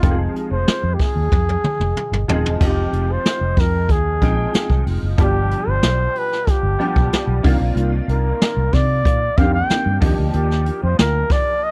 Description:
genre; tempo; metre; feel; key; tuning
polished 1980s jazz-funk pop; 93 BPM; 4/4; straight; unclear; A4 = 440 Hz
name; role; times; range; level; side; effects
breathy flugelhorn; melody; 0.0-11.7 s; F4 to G5; -25 LUFS; equal; none
clear grand piano; accompaniment; 0.0-11.7 s; B2 to G5; -27 LUFS; equal; ensemble chorus
vintage muted fingered electric bass; bass; 0.0-11.2 s; Eb1 to C3; -22 LUFS; equal; none
jazz brush drum kit; drums; 0.0-11.5 s; crash cymbal, hi-hat, kick drum, snare drum, toms; -21 LUFS; equal; none
room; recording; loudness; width
little or no reverb; dry, close 1970s-style studio recording; -18 LUFS; mono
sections
0.0-2.6 A section; 2.6-11.7 B section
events
drum fill 1.3-2.6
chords
0.0 Fm7; 2.6 Fm9; 5.2 G7; 7.4 Cm11; 10.0 Ebmaj9

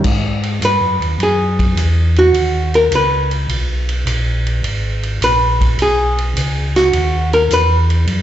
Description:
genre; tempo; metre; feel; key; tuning
soul jazz organ trio; 104 BPM; 4/4; swing 69% on 8ths; G# minor; A4 = 438 Hz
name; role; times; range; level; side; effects
archtop guitar, miked and amplified; accompaniment; 0.0-7.8 s; F#4 to B4; -15 LUFS; equal; slapback echo
mellow tonewheel organ; bass; 0.0-8.2 s; G#1 to G#2; -16 LUFS; equal; slow rotary speaker
vintage drum kit; drums; 0.0-8.2 s; crash cymbal, hi-hat, kick drum, ride cymbal, snare drum; -22 LUFS; right 1 dB; none
room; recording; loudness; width
light reverb, small room ambience; live gig heard through the venue's PA, club reverb, nothing above 7.9 kHz; -13 LUFS; side -11 dB against mid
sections
0.0-8.2 A section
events
hollow-body jazz guitar solo 0.0-8.2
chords
0.0 G#m7

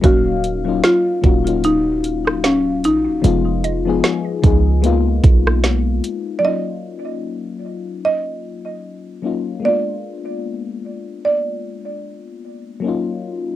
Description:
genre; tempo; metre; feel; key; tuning
contemporary R&B; 75 BPM; 4/4; swing 58% on 16ths; Eb minor; A4 = 440 Hz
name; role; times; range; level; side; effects
buzzing marimba with medium mallets; melody; 0.0-12.4 s; Db4 to Eb5; -19 LUFS; right 1 dB; analog delay
mellow FM electric piano; accompaniment; 0.0-13.6 s; F3 to F5; -22 LUFS; left 7 dB; chorus, cassette tape
warm 808-style bass; bass; 0.0-6.0 s; Eb1 to Db2; -19 LUFS; right 2 dB; none
trap drum kit; drums; 0.0-6.3 s; hi-hat, kick drum, rim click, snare drum; -15 LUFS; right 2 dB; cassette tape
mallet-like synth pluck; texture; 2.4-5.2 s; Eb5 to F5; -31 LUFS; right 10 dB; chorus, cassette tape, analog delay
room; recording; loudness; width
light reverb; home recording on cassette; -15 LUFS; side -13 dB against mid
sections
0.0-6.4 A section; 6.4-13.6 B section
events
none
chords
0.0 Ebm9; 3.2 Fm7b5; 4.8 Db13; 6.4 Ebm9; 9.6 Bb7b9; 12.8 Ebm9

